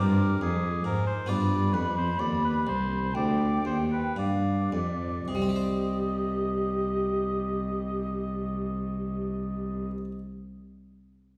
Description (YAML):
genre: classical, baroque-style sonata movement with continuo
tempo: 53-71 BPM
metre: 4/4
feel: rubato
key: C minor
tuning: A4 = 440 Hz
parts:
  - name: warm oboe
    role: melody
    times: 0.0-9.9 s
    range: Ab4 to Eb5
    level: -37 LUFS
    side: equal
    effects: none
  - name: mellow hollow concert flute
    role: second line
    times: 0.0-9.9 s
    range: G4 to D6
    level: -35 LUFS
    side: equal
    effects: none
  - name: harpsichord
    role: accompaniment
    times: 0.0-10.2 s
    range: C2 to C5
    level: -35 LUFS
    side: equal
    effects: none
  - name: dark cello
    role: bass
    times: 0.0-9.9 s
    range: C2 to Ab2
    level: -31 LUFS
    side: equal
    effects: none
room: wet recital hall reverb, RT60 1.6 s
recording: heard from further back in the room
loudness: -28 LUFS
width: mono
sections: 0.0-5.3 A section; 5.3-9.7 B section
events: slowing down 0.0-5.3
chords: 0.0 Fm; 1.3 G7; 5.3 Cm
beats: 0.41 | 1.28 2.19 3.15 4.17 | 5.29 6.39 7.50 8.61